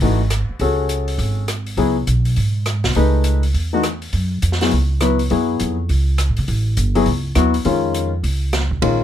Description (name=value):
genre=modal jazz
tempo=204 BPM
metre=4/4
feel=swing 63% on 8ths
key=C# minor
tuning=A4 = 436 Hz
part: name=warm baby grand piano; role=accompaniment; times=0.0-9.0 s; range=D#3 to B4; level=-18 LUFS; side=left 4 dB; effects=none
part: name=upright bass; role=bass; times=0.0-9.0 s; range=G1 to C#3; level=-18 LUFS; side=right 1 dB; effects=none
part: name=open jazz drum kit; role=drums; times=0.0-8.9 s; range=hi-hat, kick drum, ride cymbal, rim click, snare drum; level=-26 LUFS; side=right 1 dB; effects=none
room=little or no reverb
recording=none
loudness=-16 LUFS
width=side -10 dB against mid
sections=0.0-8.8 A section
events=none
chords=0.0 C#m11; 4.1 F#9sus4; 7.7 C#add9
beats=0.02 0.31 | 0.61 0.90 1.19 1.49 | 1.78 2.08 2.37 2.66 | 2.96 3.25 3.54 3.84 | 4.13 4.42 4.72 5.01 | 5.30 5.60 5.89 6.18 | 6.48 6.77 7.07 7.36 | 7.65 7.95 8.24 8.53 | 8.83